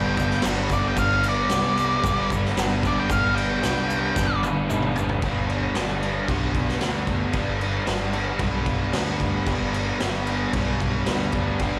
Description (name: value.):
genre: garage rock duo or trio.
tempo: 113 BPM.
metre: 4/4.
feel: straight.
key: G major.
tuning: A4 = 440 Hz.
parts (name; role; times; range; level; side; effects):
octave-fuzz lead guitar; melody; 0.0-4.4 s; D5 to G5; -27 LUFS; equal; distortion.
crunchy overdriven guitar; riff; 0.0-11.8 s; G2 to D4; -28 LUFS; equal; none.
growling picked electric bass; bass; 0.0-11.8 s; G1 to D2; -31 LUFS; equal; overdrive.
raw garage drum kit; drums; 0.2-11.7 s; crash cymbal, kick drum, snare drum, toms; -28 LUFS; equal; none.
tube shaker; percussion; 0.2-5.1 s; none; -45 LUFS; equal; none.
room: little or no reverb.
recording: live gig heard through the venue's PA, club reverb.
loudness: -23 LUFS.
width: mono.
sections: 0.0-5.2 A section; 5.2-11.8 B section.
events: lead electric guitar solo 0.0-5.2; drum fill 4.2-5.2.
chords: 0.0 G.